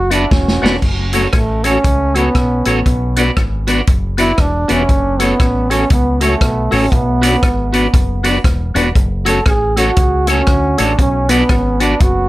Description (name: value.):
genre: ska.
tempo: 118 BPM.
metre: 4/4.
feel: swing 61% on 8ths.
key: F# minor.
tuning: A4 = 439 Hz.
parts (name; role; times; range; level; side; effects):
breathy trombone; melody; 0.0-12.3 s; A3 to A4; -17 LUFS; right 1 dB; analog delay.
fingered electric bass; bass; 0.0-12.3 s; E1 to D2; -18 LUFS; equal; none.
electric guitar at the edge of break-up; accompaniment; 0.1-11.9 s; F#4 to D5; -18 LUFS; right 3 dB; none.
percussive tonewheel organ; stabs; 0.1-11.9 s; A3 to F#4; -20 LUFS; left 4 dB; chorus vibrato, fast rotary speaker, analog delay.
vintage drum kit; drums; 0.1-12.1 s; crash cymbal, hi-hat, kick drum, rim click, snare drum; -15 LUFS; equal; none.
room: moderate small room reverb, RT60 0.5 s.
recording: none.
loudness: -11 LUFS.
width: side -17 dB against mid.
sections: 0.8-12.3 A section.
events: drum fill 0.3-0.8; trombone solo 0.8-12.3.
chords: 0.0 Bm; 0.8 F#m; 2.9 Bm; 4.9 F#m; 6.9 Bm; 9.0 F#m; 11.0 Bm.